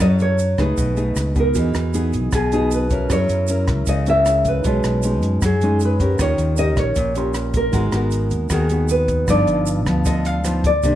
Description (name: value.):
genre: bossa nova.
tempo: 155 BPM.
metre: 4/4.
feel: straight.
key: unclear.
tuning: A4 = 441 Hz.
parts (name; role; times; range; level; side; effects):
nylon-string guitar; melody; 0.0-11.0 s; G#4 to F5; -22 LUFS; equal; none.
nylon-string guitar; accompaniment; 0.0-11.0 s; G2 to Bb4; -22 LUFS; left 1 dB; none.
fingered electric bass; bass; 0.0-11.0 s; G1 to Gb2; -21 LUFS; equal; none.
compact cocktail drum kit; drums; 0.0-10.9 s; hi-hat, kick drum, rim click; -25 LUFS; equal; none.
egg shaker; percussion; 0.2-11.0 s; none; -35 LUFS; right 8 dB; none.
dark grand piano; accompaniment; 1.5-11.0 s; B3 to C6; -29 LUFS; right 7 dB; none.
room: light reverb.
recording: none.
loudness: -16 LUFS.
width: side -12 dB against mid.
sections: 0.0-1.5 A section; 1.5-11.0 B section.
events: none.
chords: 0.0 Gbm7; 0.8 B13; 1.5 Emaj7; 3.1 Gb7; 4.6 B69; 6.2 Eb7; 7.7 Abm9; 9.3 G7b13.